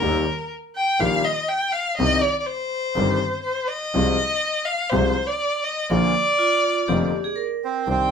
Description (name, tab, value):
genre	tango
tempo	122 BPM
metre	4/4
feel	rubato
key	unclear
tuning	A4 = 440 Hz
part	warm violin	second line	0.0-8.1 s	Bb4 to G5	-22 LUFS	left 1 dB	none
part	warm concert grand piano	accompaniment	0.0-8.1 s	F1 to G4	-24 LUFS	left 2 dB	none
part	clear double bass	bass	0.0-8.1 s	F1 to Eb2	-25 LUFS	right 2 dB	none
part	vibraphone with hard mallets	second line	6.4-7.8 s	F4 to Bb4	-27 LUFS	right 4 dB	none
part	bandoneon	melody	7.6-8.1 s	C4	-22 LUFS	right 7 dB	none
room	moderate studio reverb, RT60 0.5 s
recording	band playing live in one room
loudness	-20 LUFS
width	side -6 dB against mid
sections	0.0-7.9 A section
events	violin solo 0.0-7.9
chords	0.0 Eb; 2.0 Cm; 3.9 Fm/C; 5.9 Bb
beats	| 0.02 0.52 1.01 1.50 | 1.99 2.48 2.97 3.46 | 3.95 4.43 4.92 5.42 | 5.91 6.39 6.89 7.38 | 7.87